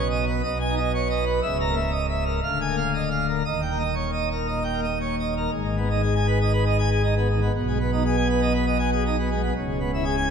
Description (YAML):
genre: classical, organ toccata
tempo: 119 BPM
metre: 4/4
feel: straight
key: G# minor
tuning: A4 = 438 Hz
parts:
  - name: pipe organ, plenum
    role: solo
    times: 0.0-10.3 s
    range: C#1 to A#5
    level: -21 LUFS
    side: equal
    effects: none
room: wet church reverb, RT60 2.7 s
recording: none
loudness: -21 LUFS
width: side -6 dB against mid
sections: 0.0-5.5 A section; 5.5-10.3 B section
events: none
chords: 0.0 G#m/B; 1.4 A#dim/C#; 2.4 A#7/D; 3.5 D#; 5.5 G#m; 7.5 G#m/B; 9.5 C#m7